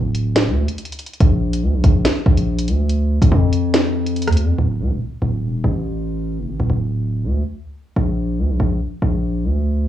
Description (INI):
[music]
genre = hip hop, drill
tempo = 142 BPM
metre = 4/4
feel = half-time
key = D minor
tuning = A4 = 440 Hz
[part]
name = distorted 808-style bass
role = bass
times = 0.0-9.9 s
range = D1 to F2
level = -17 LUFS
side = equal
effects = distortion
[part]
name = drill drum kit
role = drums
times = 0.1-4.5 s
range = hi-hat, kick drum, rim click, snare drum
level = -17 LUFS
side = equal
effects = cassette tape
[sound]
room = digital ambience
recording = home recording on cassette, small room reverb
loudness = -16 LUFS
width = side -11 dB against mid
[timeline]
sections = 0.0-4.6 A section; 4.6-9.9 B section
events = none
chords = none